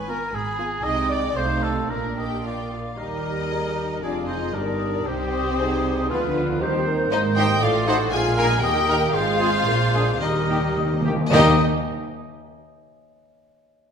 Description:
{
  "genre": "quick classical-period movement for symphony orchestra",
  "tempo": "106-120 BPM",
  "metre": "2/4",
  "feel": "rubato",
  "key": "Eb major",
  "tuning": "A4 = 440 Hz",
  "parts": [
    { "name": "rich studio violin section", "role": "melody", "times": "0.0-11.6 s", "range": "B4 to Cb6", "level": "-28 LUFS", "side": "left 4 dB", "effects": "none" },
    { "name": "warm studio violin section", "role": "second line", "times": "0.0-11.6 s", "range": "B3 to Eb5", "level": "-30 LUFS", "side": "left 2 dB", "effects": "none" },
    { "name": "rich studio cello section", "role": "bass", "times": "0.0-11.6 s", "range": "Eb2 to Eb3", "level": "-28 LUFS", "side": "right 3 dB", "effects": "none" },
    { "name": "warm studio double bass section", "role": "bass", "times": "0.0-11.6 s", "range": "F1 to Eb2", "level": "-28 LUFS", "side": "right 2 dB", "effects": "none" },
    { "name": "warm oboe", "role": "second line", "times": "0.1-11.5 s", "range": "F4 to F5", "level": "-28 LUFS", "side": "right 1 dB", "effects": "none" },
    { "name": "warm studio viola section", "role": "accompaniment", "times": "0.1-11.6 s", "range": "Ab3 to C5", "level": "-29 LUFS", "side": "right 2 dB", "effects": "none" },
    { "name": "mellow hollow small flute group", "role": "second line", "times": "3.0-11.6 s", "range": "Bb5 to A6", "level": "-30 LUFS", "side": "left 2 dB", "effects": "none" },
    { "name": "dark bassoon", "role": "accompaniment", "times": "3.0-11.5 s", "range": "G3 to C4", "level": "-30 LUFS", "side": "right 2 dB", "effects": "none" },
    { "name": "mellow French horn section", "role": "sustained chords", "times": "3.0-11.5 s", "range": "F3 to G4", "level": "-30 LUFS", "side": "left 4 dB", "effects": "none" },
    { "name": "clear trumpet section", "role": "stabs", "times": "3.0-11.5 s", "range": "G4 to C5", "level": "-30 LUFS", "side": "equal", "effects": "none" },
    { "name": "timpani", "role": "percussion", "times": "10.2-11.6 s", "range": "Eb3", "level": "-26 LUFS", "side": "equal", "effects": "none" }
  ],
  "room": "wet concert hall reverb, RT60 1.7 s",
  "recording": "minimal, uncompressed stereo recording",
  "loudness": "-19 LUFS",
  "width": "side -7 dB against mid",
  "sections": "0.0-3.0 A section; 3.0-11.3 B section; 11.3-12.4 C section",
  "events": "timpani fill 10.2-11.3",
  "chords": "0.0 Fdim/Ab; 0.8 Ab/C; 1.4 F7/C; 1.9 Bb; 3.0 Eb; 4.0 Ddim/F; 4.5 Eb/G; 5.1 Cm; 6.1 Bdim/D; 6.6 Cm/Eb; 7.1 Abmaj7; 7.6 Adim7; 8.1 Bb7; 8.6 Eb; 9.1 Fm/Ab; 9.7 Bb7; 10.2 Eb"
}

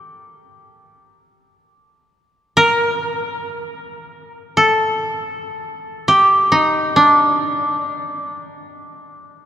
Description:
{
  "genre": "japanese traditional, Japanese chamber music",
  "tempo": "free time",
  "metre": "none",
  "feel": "none",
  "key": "unclear",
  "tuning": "A4 = 439 Hz",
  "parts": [
    { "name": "koto", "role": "solo", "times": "0.0-9.4 s", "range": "D4 to Bb4", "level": "-15 LUFS", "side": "equal", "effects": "none" }
  ],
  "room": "wet cathedral reverb, RT60 5.0 s",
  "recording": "recorded in a church or concert hall",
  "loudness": "-14 LUFS",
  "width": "side -11 dB against mid",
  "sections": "0.0-9.5 A section",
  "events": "none",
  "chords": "none"
}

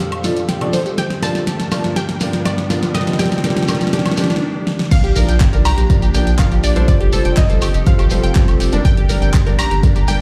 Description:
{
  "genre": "progressive house",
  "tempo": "122 BPM",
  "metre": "4/4",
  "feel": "straight",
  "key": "unclear",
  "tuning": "A4 = 439 Hz",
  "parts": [
    { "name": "unison pluck", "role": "melody", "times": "0.0-10.2 s", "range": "D5 to Bb5", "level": "-30 LUFS", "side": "equal", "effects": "dub echo" },
    { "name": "airy dreamy lead", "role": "second line", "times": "0.0-10.2 s", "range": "D5 to Bb5", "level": "-34 LUFS", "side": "equal", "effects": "chorus, sidechain pumping, dub echo" },
    { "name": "evolving wavetable pad", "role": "sustained chords", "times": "0.0-10.2 s", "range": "F2 to Bb4", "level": "-29 LUFS", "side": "equal", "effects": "chorus, built-in reverb, sidechain pumping" },
    { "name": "analog pluck", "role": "arpeggios", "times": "0.0-10.1 s", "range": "D4 to G5", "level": "-28 LUFS", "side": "equal", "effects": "chorus, phaser, sidechain pumping, dub echo" },
    { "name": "deep house drum kit", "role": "drums", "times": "0.0-10.2 s", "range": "crash cymbal, handclaps, hi-hat, snare drum, woodblock", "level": "-24 LUFS", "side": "equal", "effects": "none" },
    { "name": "shekere", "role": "percussion", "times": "0.0-10.2 s", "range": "none", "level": "-33 LUFS", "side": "equal", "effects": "none" },
    { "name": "riser and impact", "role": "sound effects", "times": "0.0-6.9 s", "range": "none", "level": "-29 LUFS", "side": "equal", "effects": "none" },
    { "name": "felt-muted upright piano", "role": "stabs", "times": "0.2-10.2 s", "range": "F3 to D5", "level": "-25 LUFS", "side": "equal", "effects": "sidechain pumping, dub echo" },
    { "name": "electronic kick drum", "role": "drums", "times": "4.9-9.9 s", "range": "none", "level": "-16 LUFS", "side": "equal", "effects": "none" },
    { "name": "saturated sub bass", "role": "bass", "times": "5.0-10.2 s", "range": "F1 to C2", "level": "-19 LUFS", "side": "equal", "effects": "sidechain pumping" }
  ],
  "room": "light reverb",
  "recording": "played on a big sound system in a bare room, large studio reverb",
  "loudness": "-16 LUFS",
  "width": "mono",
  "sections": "0.0-4.9 A section; 4.9-10.2 B section",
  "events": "build-up 0.0-4.9; drum fill 0.0-4.4, 4.7; riser 0.0-4.4; filter sweep on synth arpeggio sound 0.0-4.9; stop 4.4-4.9; drop 4.9-10.2; impact 4.9-6.9",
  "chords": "0.0 Fadd9; 1.0 Gm; 2.9 Cm7; 4.9 Bb; 6.9 Fadd9; 8.8 Gm"
}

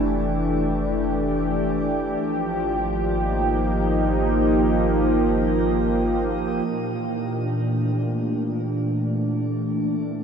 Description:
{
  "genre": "ambient",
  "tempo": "free time",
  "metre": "none",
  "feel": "none",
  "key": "Bb lydian",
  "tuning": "A4 = 440 Hz",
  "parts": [
    { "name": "warm analog pad", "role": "sustained chords", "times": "0.0-10.2 s", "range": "Bb2 to G4", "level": "-21 LUFS", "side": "equal", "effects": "lush chorus, shimmer reverb" },
    { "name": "warm sub bass", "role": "bass", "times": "0.0-6.6 s", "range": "F1 to Ab1", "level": "-28 LUFS", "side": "equal", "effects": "none" }
  ],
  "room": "wet huge ambient reverb, RT60 9.1 s",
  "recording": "none",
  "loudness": "-20 LUFS",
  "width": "side -7 dB against mid",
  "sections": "0.0-6.7 A section; 6.7-10.2 B section",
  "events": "filter sweep on analog synth pad 6.7-10.2",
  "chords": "0.0 Fmaj7; 2.2 Ab5; 6.7 Bb"
}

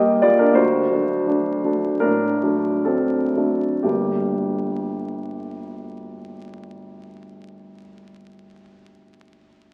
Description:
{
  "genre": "classical, romantic character piece for solo piano",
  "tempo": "58-90 BPM",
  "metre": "4/4",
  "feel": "rubato",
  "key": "G minor",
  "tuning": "A4 = 441 Hz",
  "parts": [
    { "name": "warm baby grand piano", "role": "solo", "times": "0.0-9.7 s", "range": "G1 to G5", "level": "-21 LUFS", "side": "equal", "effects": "none" }
  ],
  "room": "wet concert hall reverb, RT60 2.3 s",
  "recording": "very old 78 rpm record, vinyl crackle",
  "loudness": "-20 LUFS",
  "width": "mono",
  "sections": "0.0-3.8 A section; 3.8-7.5 B section",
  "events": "slowing down 0.0-3.8",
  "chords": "0.0 Eb; 0.6 D7; 3.8 Gm"
}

